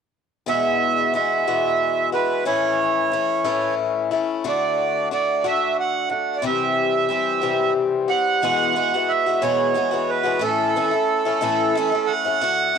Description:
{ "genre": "rock", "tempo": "60 BPM (dotted quarters)", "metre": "6/8", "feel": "straight", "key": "A major", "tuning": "A4 = 438 Hz", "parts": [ { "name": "accordion", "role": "melody", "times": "0.5-12.8 s", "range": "A4 to F#5", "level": "-20 LUFS", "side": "right 7 dB", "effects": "cassette tape" }, { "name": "picked swing-style acoustic guitar", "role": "accompaniment", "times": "0.5-12.8 s", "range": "E2 to G4", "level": "-22 LUFS", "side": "left 8 dB", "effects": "cassette tape" } ], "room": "moderate spring reverb, RT60 2.5 s", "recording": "home recording on cassette", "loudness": "-18 LUFS", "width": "side -6 dB against mid", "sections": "0.5-8.4 A section; 8.4-12.8 B section", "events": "none", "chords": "0.5 Eadd9; 2.5 A; 4.5 D; 6.4 C; 8.4 Eadd9; 10.4 A" }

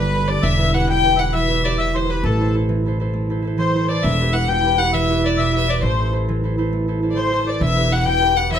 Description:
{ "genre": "celtic folk, Celtic slide", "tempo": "134 BPM (dotted quarters)", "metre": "12/8", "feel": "straight", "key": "E minor", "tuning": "A4 = 437 Hz", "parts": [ { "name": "rich fiddle", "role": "melody", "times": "0.0-8.6 s", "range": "A4 to G5", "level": "-20 LUFS", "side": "left 4 dB", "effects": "slapback echo" }, { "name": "accordion", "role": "second line", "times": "0.0-8.6 s", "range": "A4 to G5", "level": "-25 LUFS", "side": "left 2 dB", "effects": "none" }, { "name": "concert harp", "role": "accompaniment", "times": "0.0-8.6 s", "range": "B2 to C5", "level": "-22 LUFS", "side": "right 2 dB", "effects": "none" }, { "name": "upright bass", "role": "bass", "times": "0.0-8.6 s", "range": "E1 to A1", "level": "-21 LUFS", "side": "equal", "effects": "none" } ], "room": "light reverb", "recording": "close, detailed microphones", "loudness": "-16 LUFS", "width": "side -9 dB against mid", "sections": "0.4-8.6 A section", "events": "none", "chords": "0.4 Em; 2.2 Am; 4.0 Em; 5.8 Am; 7.6 Em" }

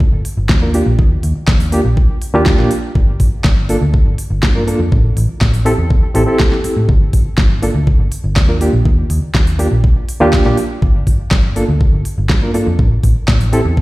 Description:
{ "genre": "nu-disco, nu disco", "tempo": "122 BPM", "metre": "4/4", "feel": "straight", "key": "G minor", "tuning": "A4 = 439 Hz", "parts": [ { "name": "vintage muted picked electric bass", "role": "bass", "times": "0.0-13.8 s", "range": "G1 to A2", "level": "-15 LUFS", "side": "equal", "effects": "none" }, { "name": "electronic kick drum", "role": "drums", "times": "0.0-13.8 s", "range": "none", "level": "-12 LUFS", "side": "equal", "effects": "none" }, { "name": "pop drum kit", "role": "drums", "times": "0.2-13.6 s", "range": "hi-hat, snare drum", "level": "-21 LUFS", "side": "equal", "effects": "none" }, { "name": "barky reed electric piano", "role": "accompaniment", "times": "0.6-13.6 s", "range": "Bb3 to Bb4", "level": "-17 LUFS", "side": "right 1 dB", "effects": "overdrive, fast tremolo, vintage 12-bit sampler grit, sidechain pumping, tape echo" } ], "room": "light reverb", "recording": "played on a big sound system in a bare room, large studio reverb", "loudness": "-11 LUFS", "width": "side -19 dB against mid", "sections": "0.0-13.8 A section", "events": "none", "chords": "0.0 Gm; 0.7 Ebmaj9; 3.0 Gm7; 4.9 Am7; 6.9 Gm; 8.6 Ebmaj9; 10.8 Gm7; 12.8 A5" }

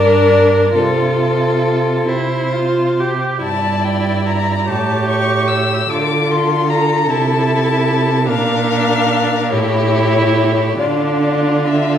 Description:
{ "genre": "classical, slow romantic movement for string quartet", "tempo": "44-51 BPM (dotted quarters)", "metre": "6/8", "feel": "rubato", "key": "D minor from 3.4 s", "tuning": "A4 = 440 Hz", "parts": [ { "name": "dark violin", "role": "melody", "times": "0.0-12.0 s", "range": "C5 to E6", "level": "-19 LUFS", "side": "left 6 dB", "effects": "none" }, { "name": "rich violin", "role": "second line", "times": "0.0-12.0 s", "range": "F4 to D5", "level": "-19 LUFS", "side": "left 1 dB", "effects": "none" }, { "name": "rich viola", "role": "accompaniment", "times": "0.0-12.0 s", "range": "D4 to G4", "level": "-19 LUFS", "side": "right 2 dB", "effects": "none" }, { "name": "rich cello", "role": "bass", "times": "0.0-12.0 s", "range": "G2 to D3", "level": "-18 LUFS", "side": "right 3 dB", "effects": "none" } ], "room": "wet recital hall reverb, RT60 1.4 s", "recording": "recorded in a church or concert hall", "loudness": "-13 LUFS", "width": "side -9 dB against mid", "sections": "0.0-12.0 A section", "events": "none", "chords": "0.0 Gm; 0.8 F/C; 2.1 C; 3.4 Gm69; 4.7 A7; 5.9 Dm; 7.1 Am/C; 8.3 Bb; 9.5 A7; 10.8 Dm" }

